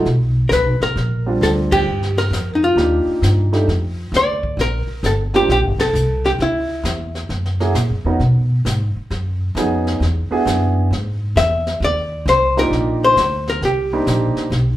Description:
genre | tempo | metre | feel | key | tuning
jazz, small-group swing and bop | 133 BPM | 4/4 | swing 66% on 8ths | unclear | A4 = 441 Hz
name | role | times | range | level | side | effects
archtop guitar, miked and amplified | melody | 0.0-7.3, 11.4-14.5 s | Eb4 to E5 | -18 LUFS | left 1 dB | none
warm baby grand piano | accompaniment | 0.0-14.5 s | G3 to Bb4 | -20 LUFS | right 2 dB | none
upright bass | bass | 0.0-14.8 s | F1 to B2 | -19 LUFS | equal | none
jazz brush drum kit | drums | 0.1-14.8 s | brushed snare drum, hi-hat, kick drum, ride cymbal, snare drum | -28 LUFS | left 1 dB | none
room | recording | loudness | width
wet club reverb, RT60 0.7 s | heard from further back in the room | -15 LUFS | side -14 dB against mid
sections
0.0-4.6 A section; 4.6-14.8 A section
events
band accent 1.6, 5.7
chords
0.1 Aadd9; 1.0 Bb69; 1.9 Fsus4; 2.8 Ebmaj9#11; 3.7 Dm; 4.6 Bbsus2; 6.4 Dbm; 7.3 Gb7; 8.2 B69; 10.0 E9; 11.8 Ebmaj7; 13.6 Cm7

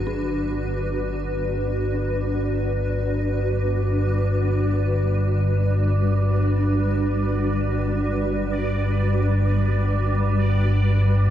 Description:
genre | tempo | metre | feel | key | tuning
dark ambient drone | free time | none | none | G major | A4 = 441 Hz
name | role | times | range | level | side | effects
granular cloud pad | sustained chords | 0.0-11.3 s | G3 to B4 | -25 LUFS | equal | built-in reverb, analog chorus
dark detuned synth bell | arpeggios | 0.0-11.3 s | D4 to F#4 | -37 LUFS | equal | none
deep rumbling drone | drone | 0.0-11.3 s | G1 to G2 | -22 LUFS | equal | built-in reverb, lush chorus
bubbling stepped-filter texture | texture | 0.1-11.3 s | D5 | -32 LUFS | right 5 dB | chorus, built-in reverb
room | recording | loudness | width
wet cathedral reverb, RT60 5.2 s | dreamy mix soaked in reverb | -20 LUFS | side -11 dB against mid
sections
0.1-11.3 A section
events
none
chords
0.1 G

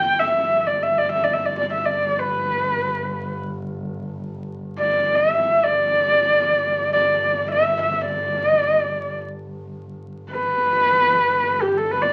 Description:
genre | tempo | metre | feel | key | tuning
mongolian traditional, Mongolian folk | free time | none | none | G gong mode | A4 = 440 Hz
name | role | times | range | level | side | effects
dark horsehead fiddle | melody | 0.0-12.1 s | G4 to G5 | -20 LUFS | equal | none
dark double bass | drone | 0.0-12.1 s | G1 | -35 LUFS | equal | none
room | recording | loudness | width
moderate club reverb, RT60 0.6 s | very old 78 rpm record, vinyl crackle | -20 LUFS | mono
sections
0.0-12.1 A section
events
slowing down 10.5-12.1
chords
none

